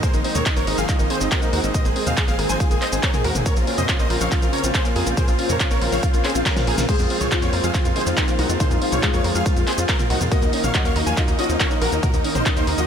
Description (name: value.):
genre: uplifting trance.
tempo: 140 BPM.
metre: 4/4.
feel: straight.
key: Bb minor.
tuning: A4 = 440 Hz.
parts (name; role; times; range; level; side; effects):
big supersaw lead; melody; 0.0-12.8 s; Db4 to Ab5; -25 LUFS; equal; lush chorus, sidechain pumping, ping-pong delay.
bright baby grand piano; second line; 0.0-12.8 s; Eb4 to Ab5; -32 LUFS; right 1 dB; sidechain pumping, diffuse ambient delay.
lush unison pad; sustained chords; 0.0-12.9 s; Db3 to C4; -28 LUFS; equal; chorus, sidechain pumping.
analog pluck; arpeggios; 0.0-12.8 s; F3 to Bb4; -29 LUFS; left 4 dB; chorus, sidechain pumping, diffuse ambient delay.
big-room dance drum kit; drums; 0.0-12.9 s; crash cymbal, handclaps, hi-hat, shaker, snare drum, toms; -25 LUFS; equal; none.
electronic kick drum; drums; 0.0-12.5 s; none; -21 LUFS; equal; none.
tight sequencer bass; bass; 0.1-12.9 s; Ab1 to F2; -25 LUFS; equal; tube saturation, sidechain pumping.
felt-muted upright piano; second line; 6.9-12.9 s; Eb3 to Bb4; -28 LUFS; left 3 dB; wide subtle chorus, diffuse ambient delay.
room: light reverb.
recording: none.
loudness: -17 LUFS.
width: side -8 dB against mid.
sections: 0.0-12.9 A section.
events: drum fill 6.5-6.9.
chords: 0.0 Ab; 3.5 Bbmadd9; 6.9 Fm; 10.3 Ebm.